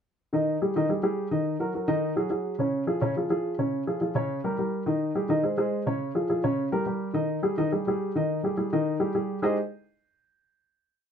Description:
jazz; 211 BPM; 4/4; straight; Ab major; A4 = 438 Hz
dark upright piano; solo; 0.3-9.6 s; Db3 to Eb5; -25 LUFS; equal
light reverb; -25 LUFS; side -7 dB against mid
0.3-9.4 A section; 9.4-10.6 final chord
0.3 Ab5; 1.5 Ebm; 2.0 Ab5; 2.6 Db; 4.3 Gdim/Db; 4.9 Ab5; 5.4 Abadd11; 6.0 Db; 6.6 Gdim/Db; 7.2 Ab5; 9.4 Abmaj7

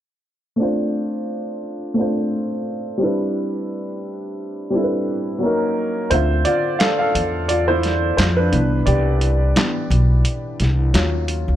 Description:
lo-fi hip hop; 87 BPM; 4/4; swing 57% on 16ths; D dorian; A4 = 442 Hz
warm upright piano; accompaniment; 0.6-11.6 s; D3 to F5; -20 LUFS; equal; low-pass filter
upright bass; bass; 6.1-11.6 s; B1 to F2; -18 LUFS; equal
lo-fi sampler-style drum kit; drums; 6.1-11.5 s; handclaps, hi-hat, snare drum; -22 LUFS; equal
light reverb, small room reverb; dark, warm production, low-pass filter; -17 LUFS; side -12 dB against mid
0.6-6.1 A section; 6.1-11.6 B section
filter sweep 0.6-6.1; kick muted 6.1-11.6; upright piano solo 6.1-11.6
0.6 Dm7; 3.0 Cmaj9; 5.4 Ebm7; 6.1 Dm7; 8.5 Cmaj9; 10.9 Ebm7

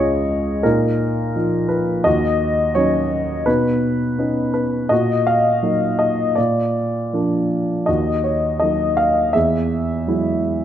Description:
classical, lyrical solo piano; 83 BPM; 4/4; rubato; Eb minor; A4 = 438 Hz
dark baby grand piano; solo; 0.0-10.6 s; Db2 to F5; -16 LUFS; equal
moderate recital hall reverb, RT60 1.3 s; -16 LUFS; side -10 dB against mid
0.0-10.6 A section
0.0 Db; 0.6 Bbsus4; 2.1 Ebm7; 3.5 Badd9; 4.9 Ebm/Bb; 6.4 Bb; 7.9 Ebm; 9.4 Eadd9

